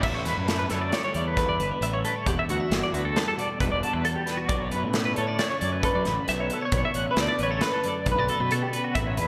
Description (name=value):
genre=math rock and midwest emo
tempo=134 BPM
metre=5/4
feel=straight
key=unclear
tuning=A4 = 440 Hz
part: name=twelve-string electric guitar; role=accompaniment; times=0.0-9.3 s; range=E2 to F#4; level=-35 LUFS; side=equal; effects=slapback echo
part: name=twelve-string electric guitar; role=arpeggios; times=0.0-9.3 s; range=F#4 to F#5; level=-31 LUFS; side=equal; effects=tremolo, slapback echo
part: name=fuzz fingered electric bass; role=bass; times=0.0-9.3 s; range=E1 to B2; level=-33 LUFS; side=equal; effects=overdrive
part: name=modern studio drum kit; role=drums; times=0.0-9.3 s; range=crash cymbal, hi-hat, kick drum, snare drum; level=-32 LUFS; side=equal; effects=none
part: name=semi-hollow electric guitar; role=melody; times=0.7-8.5 s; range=F#4 to D5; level=-32 LUFS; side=equal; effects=analog chorus, slapback echo
room=wet lush hall reverb, RT60 1.7 s, studio reverb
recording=big arena sound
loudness=-26 LUFS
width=mono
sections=0.0-9.3 A section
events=none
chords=0.0 A13sus4; 2.3 Em11; 4.5 Bm9